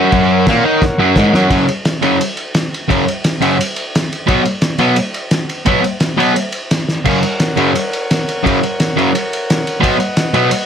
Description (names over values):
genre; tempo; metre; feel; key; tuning
garage rock duo or trio; 173 BPM; 4/4; straight; F# major; A4 = 441 Hz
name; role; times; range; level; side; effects
combo organ; sustained chords; 0.0-1.5, 7.1-10.7 s; A#4 to F#5; -21 LUFS; left 1 dB; none
fuzz guitar; riff; 0.0-10.5 s; F#2 to D#4; -12 LUFS; equal; distortion
cloth-damped thuddy drum kit; drums; 0.1-10.6 s; crash cymbal, kick drum, ride cymbal, snare drum, splash cymbal; -17 LUFS; equal; none
room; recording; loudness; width
moderate studio ambience, RT60 0.5 s; none; -12 LUFS; side -8 dB against mid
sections
0.0-1.5 A section; 1.5-10.7 B section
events
drum fill 0.8-1.5, 6.9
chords
0.0 F#; 1.5 F#5; 4.3 B5; 7.1 F#; 9.8 B